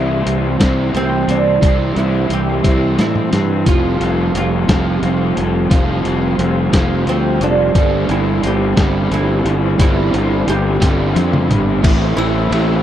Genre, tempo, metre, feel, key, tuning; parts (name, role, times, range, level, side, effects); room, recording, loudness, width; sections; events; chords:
indie rock; 59 BPM (dotted quarters); 6/8; straight; A4 = 441 Hz
mellow tonewheel organ; sustained chords; 0.0-12.8 s; G4 to C6; -28 LUFS; left 1 dB; slow rotary speaker, chorus vibrato
overdriven semi-hollow guitar; riff; 0.0-12.8 s; G2 to F4; -20 LUFS; right 6 dB; ensemble chorus, tape echo
raw garage guitar; riff; 0.0-12.8 s; E3 to E4; -23 LUFS; left 11 dB; overdrive, harmonic tremolo
fuzz fingered electric bass; bass; 0.0-12.8 s; F1 to A2; -18 LUFS; left 1 dB; overdrive
dusty soul sampler-style drum kit; drums; 0.3-12.7 s; crash cymbal, hi-hat, kick drum, ride cymbal, snare drum, toms; -16 LUFS; left 1 dB
oud; melody; 1.0-12.8 s; C4 to G4; -21 LUFS; right 4 dB
glockenspiel with brass mallets; second line; 12.2-12.8 s; E6; -27 LUFS; left 11 dB
little or no reverb; dry, close 1970s-style studio recording; -13 LUFS; side -11 dB against mid
0.0-11.8 A section
oud solo 0.0-11.8; drum fill 2.6-3.7, 10.8-11.8
0.0 C; 3.7 Fsus2; 7.8 Gsus4; 11.8 Am